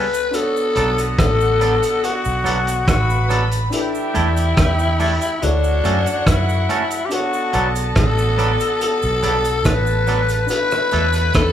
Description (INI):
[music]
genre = lovers rock reggae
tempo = 71 BPM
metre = 4/4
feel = straight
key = B minor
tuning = A4 = 440 Hz
[part]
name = growling tenor saxophone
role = melody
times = 0.0-11.5 s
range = D4 to B4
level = -20 LUFS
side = left 3 dB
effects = none
[part]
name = warm baby grand piano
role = accompaniment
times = 0.0-11.5 s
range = D4 to C#5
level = -30 LUFS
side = left 2 dB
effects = tape echo
[part]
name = twangy electric guitar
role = stabs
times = 0.0-11.1 s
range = F#3 to A4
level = -24 LUFS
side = right 4 dB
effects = none
[part]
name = cloth-damped thuddy drum kit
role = drums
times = 0.1-11.5 s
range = hi-hat, kick drum, rim click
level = -22 LUFS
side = equal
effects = none
[part]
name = cabasa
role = percussion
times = 0.1-11.5 s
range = none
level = -35 LUFS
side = right 7 dB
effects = none
[part]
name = clear horn section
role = second line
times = 0.3-11.5 s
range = B2 to C#5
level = -29 LUFS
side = right 1 dB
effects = none
[part]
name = warm studio string section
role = second line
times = 0.3-11.5 s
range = F#4 to B5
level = -28 LUFS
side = equal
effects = none
[part]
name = vintage muted fingered electric bass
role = bass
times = 0.8-11.5 s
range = A1 to F#2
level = -20 LUFS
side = right 1 dB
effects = none
[sound]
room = moderate large studio reverb, RT60 1.3 s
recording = band playing live in one room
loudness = -15 LUFS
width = side -10 dB against mid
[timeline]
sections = 0.3-11.5 A section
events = none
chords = 0.3 Bm7; 3.7 E7sus4; 5.4 Dmaj7; 7.1 Bm7; 10.5 E7sus4